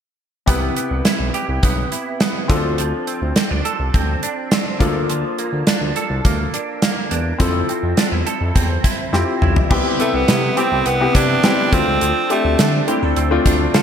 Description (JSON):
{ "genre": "1980s-style pop", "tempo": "104 BPM", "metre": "4/4", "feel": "straight", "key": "C major", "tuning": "A4 = 442 Hz", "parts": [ { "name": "clear concert grand piano", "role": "accompaniment", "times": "0.5-13.8 s", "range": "C3 to B4", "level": "-22 LUFS", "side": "left 3 dB", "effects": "none" }, { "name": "direct-recorded clean electric guitar", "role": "riff", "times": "0.5-13.8 s", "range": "F3 to A4", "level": "-25 LUFS", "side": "right 5 dB", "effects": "ensemble chorus, ping-pong delay" }, { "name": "smooth gliding synth bass", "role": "bass", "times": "0.5-13.8 s", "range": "B1 to D3", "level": "-21 LUFS", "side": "equal", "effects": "none" }, { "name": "gated 80s drum kit", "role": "drums", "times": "0.5-13.8 s", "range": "crash cymbal, hi-hat, kick drum, snare drum, toms", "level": "-18 LUFS", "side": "equal", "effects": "gated reverb" }, { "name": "raspy tenor saxophone", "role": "melody", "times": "10.0-12.8 s", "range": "A3 to D4", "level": "-19 LUFS", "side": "right 2 dB", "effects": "none" } ], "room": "moderate lush hall reverb, RT60 1.7 s, studio reverb", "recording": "bright 1980s-style digital production", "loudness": "-15 LUFS", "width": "side -8 dB against mid", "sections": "0.5-9.7 A section; 9.7-13.8 B section", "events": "drum fill 9.1-9.7", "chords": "0.5 Cmaj7; 2.5 Dm7; 4.8 Bbmaj7/D; 7.4 Fmaj7; 9.7 Cmaj7; 11.7 Dm7" }